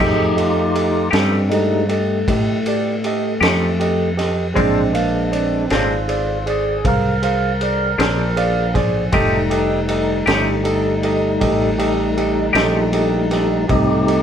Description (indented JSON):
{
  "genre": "slow blues",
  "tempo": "52 BPM (dotted quarters)",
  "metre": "12/8",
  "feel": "straight",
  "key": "F mixolydian",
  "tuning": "A4 = 442 Hz",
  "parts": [
    { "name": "barky tine electric piano", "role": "accompaniment", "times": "0.0-14.2 s", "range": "G4 to Ab5", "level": "-21 LUFS", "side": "right 3 dB", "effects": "none" },
    { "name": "semi-hollow electric guitar", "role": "accompaniment", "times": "0.0-12.8 s", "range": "Bb2 to G4", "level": "-20 LUFS", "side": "left 3 dB", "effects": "tremolo" },
    { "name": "tonewheel organ", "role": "sustained chords", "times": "0.0-14.2 s", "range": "G3 to Bb4", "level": "-20 LUFS", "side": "left 1 dB", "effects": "slow rotary speaker" },
    { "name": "fretless electric bass", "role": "bass", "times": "0.0-14.2 s", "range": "F1 to A2", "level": "-22 LUFS", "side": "equal", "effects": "none" },
    { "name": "crunchy breakbeat drum kit", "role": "drums", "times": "0.0-14.2 s", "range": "crash cymbal, kick drum, ride cymbal, snare drum", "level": "-24 LUFS", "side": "equal", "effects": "none" }
  ],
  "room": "moderate studio reverb, RT60 0.9 s",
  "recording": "band playing live in one room",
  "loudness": "-15 LUFS",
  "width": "side -8 dB against mid",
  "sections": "0.0-14.2 A section",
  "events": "tonewheel organ solo 0.0-14.2; tine electric piano fill 8.0-9.1",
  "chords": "0.0 F9; 4.6 Bb9; 9.1 F9"
}